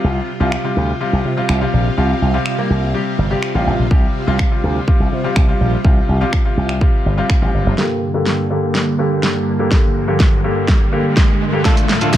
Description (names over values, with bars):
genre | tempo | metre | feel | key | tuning
dance-pop | 124 BPM | 4/4 | straight | unclear | A4 = 441 Hz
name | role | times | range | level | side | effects
clear concert grand piano | accompaniment | 0.0-12.2 s | C3 to G4 | -20 LUFS | left 2 dB | sidechain pumping, low-pass filter
string machine, violins | sustained chords | 0.0-12.2 s | D2 to F4 | -22 LUFS | right 1 dB | ensemble chorus, sidechain pumping, low-pass filter
slap bass with an envelope filter | bass | 0.0-7.7 s | F1 to C3 | -17 LUFS | equal | sidechain pumping
pop drum kit | drums | 0.5-12.2 s | finger snaps, hi-hat, kick drum, shaker, snare drum | -15 LUFS | equal | none
riser | sound effects | 9.5-12.2 s | none | -25 LUFS | right 1 dB | none
clean electric guitar | riff | 11.6-12.2 s | D4 to A4 | -23 LUFS | right 3 dB | wide subtle chorus, low-pass filter
group handclap | percussion | 12.1-12.2 s | none | -24 LUFS | left 7 dB | none
room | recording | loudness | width
little or no reverb | none | -14 LUFS | side -12 dB against mid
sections
0.0-7.8 A section; 7.8-12.2 B section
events
build-up 7.8-12.2; drum fill 7.8-12.2; filter sweep 7.8-12.2; riser 9.5-12.2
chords
0.0 Csus4; 7.8 Gm; 11.7 Dm